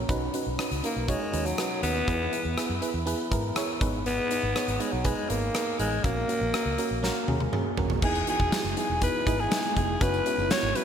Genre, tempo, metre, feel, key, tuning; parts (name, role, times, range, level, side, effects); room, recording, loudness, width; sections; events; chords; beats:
1980s-style pop; 121 BPM; 4/4; straight; A4 = 440 Hz
FM electric piano; accompaniment; 0.0-10.8 s; G#2 to C#5; -31 LUFS; right 3 dB; chorus
vintage muted fingered electric bass; bass; 0.0-10.7 s; D#1 to G#2; -32 LUFS; equal
huge arena drum kit; drums; 0.1-10.8 s; crash cymbal, hi-hat, kick drum, rim click, snare drum, toms; -30 LUFS; left 1 dB; gated reverb
raspy alto saxophone; melody; 0.8-10.8 s; F#3 to C#5; -29 LUFS; left 1 dB
ethereal airy pad; sustained chords; 9.1-10.8 s; C#3 to E4; -37 LUFS; right 1 dB
tambourine; percussion; 8.0-10.8 s; -46 LUFS; left 11 dB
moderate plate reverb, RT60 2.4 s; bright 1980s-style digital production; -25 LUFS; side -8 dB against mid
0.0-8.0 A section; 8.0-10.8 B section
drum fill 7.0-8.0
0.1 Badd9; 2.1 E; 3.8 G#m; 6.0 F#/A#; 8.0 Emaj7; 10.0 F#7sus4
| 0.09 0.59 1.08 1.58 | 2.08 2.57 3.07 3.56 | 4.06 4.56 5.05 5.55 | 6.04 6.54 7.04 7.53 | 8.03 8.52 9.02 9.52 | 10.01 10.51